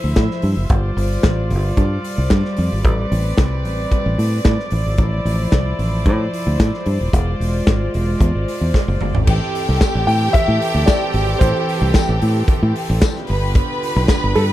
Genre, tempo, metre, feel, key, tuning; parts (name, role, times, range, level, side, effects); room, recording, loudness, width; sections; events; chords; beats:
disco; 112 BPM; 4/4; straight; A minor; A4 = 440 Hz
warm studio string section; sustained chords; 0.0-14.5 s; D3 to E5; -24 LUFS; equal
fingered electric bass; bass; 0.0-14.5 s; D#1 to A2; -18 LUFS; equal
modern studio drum kit; drums; 0.2-14.5 s; crash cymbal, hi-hat, kick drum, snare drum, toms; -19 LUFS; equal
clear symphonic string section; second line; 9.3-14.5 s; G4 to B5; -22 LUFS; right 2 dB
tambourine; percussion; 9.8-14.2 s; -32 LUFS; left 9 dB
clear concert grand piano; melody; 10.1-14.4 s; A4 to G5; -21 LUFS; left 1 dB; slapback echo
little or no reverb; -15 LUFS; side -14 dB against mid
0.0-9.3 A section; 9.3-14.5 B section
drum fill 8.7-9.3
0.0 Dm9; 0.7 G7sus4; 2.8 Am11; 4.7 Dm9; 7.1 E7b9b13; 9.3 Am7; 13.3 G7
0.16 | 0.70 1.24 1.77 2.31 | 2.84 3.38 3.92 4.45 | 4.99 5.52 6.06 6.59 | 7.13 7.67 8.20 8.74 | 9.27 9.81 10.34 10.88 | 11.41 11.95 12.48 13.02 | 13.55 14.08